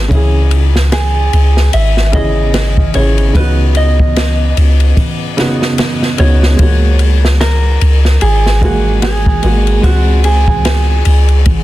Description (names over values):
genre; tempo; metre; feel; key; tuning
trip hop; 74 BPM; 4/4; swing 58% on 16ths; C# dorian; A4 = 438 Hz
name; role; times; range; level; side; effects
dark upright piano; accompaniment; 0.0-11.6 s; C#3 to G#4; -18 LUFS; right 1 dB; harmonic tremolo, tape echo
soft 808-style bass; bass; 0.0-11.6 s; G#1 to C#2; -10 LUFS; equal; none
open jazz drum kit; drums; 0.1-11.6 s; kick drum, ride cymbal, snare drum; -15 LUFS; equal; none
mellow electric guitar; melody; 0.9-11.6 s; F#4 to E5; -19 LUFS; right 2 dB; tape echo
room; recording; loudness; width
small room ambience; dense, heavily limited modern master; -9 LUFS; side -16 dB against mid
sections
0.0-11.6 A section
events
none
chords
0.1 C#m; 3.4 B/C#; 6.6 F#add9/C#; 9.8 G#7/C#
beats
| 0.11 0.92 1.73 2.54 | 3.35 4.16 4.97 5.78 | 6.59 7.41 8.21 9.03 | 9.84 10.65 11.46